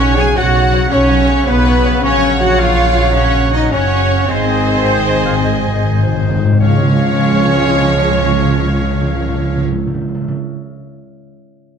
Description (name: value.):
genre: cinematic, heroic adventure film score.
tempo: 106 BPM (dotted quarters).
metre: 12/8.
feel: straight.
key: Db major.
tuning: A4 = 440 Hz.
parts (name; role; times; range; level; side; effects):
rich symphonic violin section; melody; 0.0-9.6 s; Cb5 to Ab5; -25 LUFS; left 4 dB; none.
mellow oboe; second line; 0.0-9.6 s; F5 to Ab5; -27 LUFS; right 2 dB; none.
small flute group; second line; 0.0-9.6 s; Cb5 to Ab5; -24 LUFS; right 2 dB; none.
warm clarinet; second line; 0.0-9.6 s; C5 to F5; -27 LUFS; left 2 dB; none.
warm symphonic violin section; second line; 0.0-9.6 s; Db5 to Ab5; -26 LUFS; left 3 dB; none.
rich symphonic viola section; accompaniment; 0.0-9.6 s; Ab4 to Eb5; -24 LUFS; right 2 dB; none.
mellow French horn section; sustained chords; 0.0-9.6 s; Cb4 to Ab4; -19 LUFS; left 4 dB; none.
warm trombone section; sustained chords; 0.0-9.6 s; Db3 to Ab3; -24 LUFS; right 5 dB; none.
concert harp; arpeggios; 0.0-10.5 s; Ab2 to F5; -25 LUFS; left 13 dB; none.
clear trumpet section; stabs; 0.0-9.6 s; Cb5 to Ab5; -22 LUFS; right 4 dB; none.
rich studio double bass section; bass; 0.0-9.6 s; Gb1 to Db2; -17 LUFS; right 2 dB; none.
rich symphonic cello section; bass; 0.0-9.6 s; F3 to Ab4; -22 LUFS; right 2 dB; none.
timpani; percussion; 4.3-10.4 s; Ab2 to Db3; -17 LUFS; equal; none.
room: light reverb.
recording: none.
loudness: -11 LUFS.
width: side -7 dB against mid.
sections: 0.0-6.6 A section; 6.6-8.9 B section.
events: timpani fill 4.3-6.6.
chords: 0.0 Cbsus2; 2.0 Gb/Bb; 4.3 Ab; 6.6 Db.